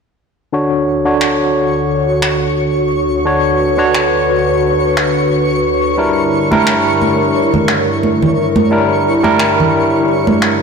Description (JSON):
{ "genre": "sunset chillout", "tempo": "88 BPM", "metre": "4/4", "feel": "swing 55% on 16ths", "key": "D major", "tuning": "A4 = 439 Hz", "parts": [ { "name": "barky tine electric piano", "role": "accompaniment", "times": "0.5-10.6 s", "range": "D3 to C#5", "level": "-14 LUFS", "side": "moving between left 3 dB and right 3 dB", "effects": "medium stereo tremolo, auto-pan, low-pass filter, digital delay" }, { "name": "airy breathy pad", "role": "sustained chords", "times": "0.5-10.6 s", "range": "D2 to C#5", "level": "-16 LUFS", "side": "equal", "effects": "chorus" }, { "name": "twinkling granular texture", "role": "texture", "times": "1.6-10.6 s", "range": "C#5 to C#6", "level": "-21 LUFS", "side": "left 2 dB", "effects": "built-in reverb" }, { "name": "finger snaps", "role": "drums", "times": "1.2-10.6 s", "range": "none", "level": "-20 LUFS", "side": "equal", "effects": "soft clipping on snare" }, { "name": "congas", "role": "percussion", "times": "6.5-10.4 s", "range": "none", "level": "-17 LUFS", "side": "right 3 dB", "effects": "none" } ], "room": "wet scoring stage reverb, RT60 1.9 s, small room ambience", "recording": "blown-out, overdriven recording, overdrive", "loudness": "-11 LUFS", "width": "side -5 dB against mid", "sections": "0.5-10.6 A section", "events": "filter sweep on tine electric piano 0.5-10.6; filter sweep on analog synth pad 0.5-10.6", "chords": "0.5 Dmaj7; 6.0 Gm6" }